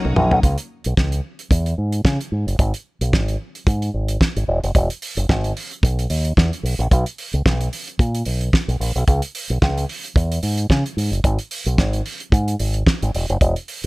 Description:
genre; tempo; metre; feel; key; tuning
disco; 111 BPM; 4/4; swing 56% on 16ths; C# dorian; A4 = 440 Hz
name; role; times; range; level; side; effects
tine electric piano; accompaniment; 0.0-0.5 s; F#3 to D#4; -25 LUFS; left 3 dB; fast stereo tremolo
fingered electric bass with an envelope filter; bass; 0.0-13.9 s; E1 to C#3; -19 LUFS; equal; none
damped 70s drum kit; drums; 0.0-13.9 s; hi-hat, kick drum, snare drum, toms; -19 LUFS; equal; none
room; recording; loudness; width
little or no reverb; none; -18 LUFS; side -24 dB against mid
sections
0.4-13.9 A section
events
drum fill 0.0-0.4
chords
0.4 C#m; 2.6 N.C.; 4.5 Emaj7; 6.9 N.C.; 9.1 C#m; 11.2 N.C.

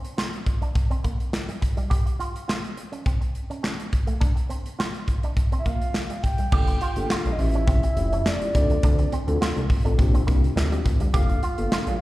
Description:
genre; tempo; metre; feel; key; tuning
early-eighties boogie funk; 104 BPM; 4/4; straight; G minor; A4 = 440 Hz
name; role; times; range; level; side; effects
modern studio drum kit; drums; 0.0-12.0 s; crash cymbal, handclaps, hi-hat, kick drum, snare drum; -23 LUFS; equal; none
electric guitar with an envelope filter; riff; 0.2-11.8 s; G3 to G4; -34 LUFS; right 4 dB; analog chorus, slapback echo
soft octave-layered synth lead; melody; 5.6-12.0 s; D5 to G5; -30 LUFS; equal; chorus, phaser, slapback echo
mellow tine electric piano; accompaniment; 6.5-11.9 s; Bb3 to A4; -30 LUFS; left 3 dB; slow stereo tremolo, slapback echo
chorused synth bass; bass; 6.5-12.0 s; F1 to D2; -23 LUFS; equal; none
room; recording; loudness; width
light reverb; live gig heard through the venue's PA, recital hall reverb; -21 LUFS; side -17 dB against mid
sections
0.0-6.5 A section; 6.5-12.0 B section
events
none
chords
0.0 Dm; 0.8 Gmadd11; 1.9 Fsus2; 2.8 N.C.; 3.9 Dm7; 5.4 Bb5; 5.9 N.C.; 6.5 Gm9; 7.4 A7b13; 8.5 Dm7; 10.0 Bb6; 11.1 Gm9

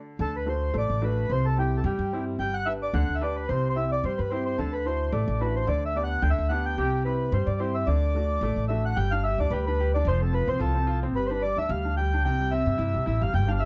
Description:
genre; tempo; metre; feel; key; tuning
celtic folk; 219 BPM; 4/4; swing 55% on 8ths; D mixolydian, G mixolydian from 9.0 s; A4 = 437 Hz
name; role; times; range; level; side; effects
bright upright piano; accompaniment; 0.0-13.7 s; C3 to B4; -34 LUFS; equal; none
mellow accordion; melody; 0.2-13.7 s; G4 to G5; -31 LUFS; equal; none
upright bass; bass; 0.2-13.7 s; F1 to G2; -29 LUFS; equal; none
room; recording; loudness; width
light reverb; dark, warm production, nothing above 7.9 kHz; -26 LUFS; mono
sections
0.2-9.0 A section; 9.0-13.7 B section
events
none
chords
0.2 D; 1.3 C; 2.4 G; 3.5 C; 4.6 Dadd9; 5.7 G/D; 6.8 C; 7.9 D; 9.0 G; 10.1 F; 11.2 G5; 12.2 C

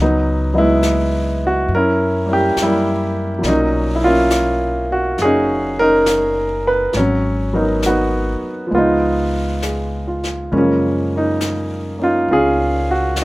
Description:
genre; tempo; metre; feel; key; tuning
jazz ballad; 68 BPM; 4/4; swing 66% on 8ths; unclear; A4 = 440 Hz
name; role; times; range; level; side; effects
warm baby grand piano; accompaniment; 0.0-13.2 s; A#2 to Eb5; -15 LUFS; equal; none
upright bass; bass; 0.0-13.2 s; F#1 to Gb2; -22 LUFS; equal; none
jazz brush drum kit; drums; 0.8-13.2 s; brushed snare drum, hi-hat, snare drum; -29 LUFS; left 2 dB; none
room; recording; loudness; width
light reverb; rough home demo mix; -14 LUFS; side -19 dB against mid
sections
0.0-13.2 A section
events
none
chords
0.0 Dbm11; 1.7 Gb7b9; 3.4 Bmaj9; 6.9 Abm7; 8.7 Db7; 10.5 Gbmaj7

